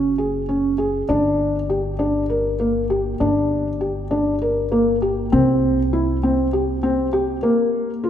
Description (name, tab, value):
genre	contemporary instrumental, chamber music in an uneven meter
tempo	198 BPM (eighths)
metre	7/8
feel	straight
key	unclear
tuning	A4 = 441 Hz
part	felt-muted upright piano	arpeggios	0.0-8.1 s	Bb3 to Bb4	-18 LUFS	equal	none
part	upright bass	bass	0.0-7.4 s	Gb1 to C2	-26 LUFS	left 1 dB	none
room	wet concert hall reverb, RT60 2.4 s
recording	minimal, uncompressed stereo recording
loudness	-18 LUFS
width	side -10 dB against mid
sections	0.0-8.1 A section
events	none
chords	0.0 Gbsus2; 1.1 Gm; 5.3 C5; 7.4 N.C.